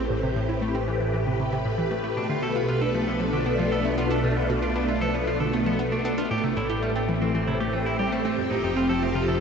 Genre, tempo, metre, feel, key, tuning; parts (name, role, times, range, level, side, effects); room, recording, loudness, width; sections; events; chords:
ambient, sequencer-driven space music; 116 BPM; 4/4; straight; A minor; A4 = 440 Hz
phased string machine; sustained chords; 0.0-9.4 s; A2 to B4; -25 LUFS; equal; ensemble chorus, phaser
analog pluck; riff; 0.0-9.4 s; F2 to F4; -29 LUFS; equal; chorus, ping-pong delay
fat analog bass; bass; 0.0-9.4 s; A1; -33 LUFS; equal
clean electric guitar; arpeggios; 2.2-9.4 s; G3 to A4; -32 LUFS; right 1 dB; auto-pan, ping-pong delay
wet huge ambient reverb, RT60 8.4 s; dark, warm production, nothing above 8.0 kHz; -22 LUFS; side -6 dB against mid
0.0-9.4 A section
0.0 Am7; 2.2 Bm7b5; 6.3 Am7; 8.4 F7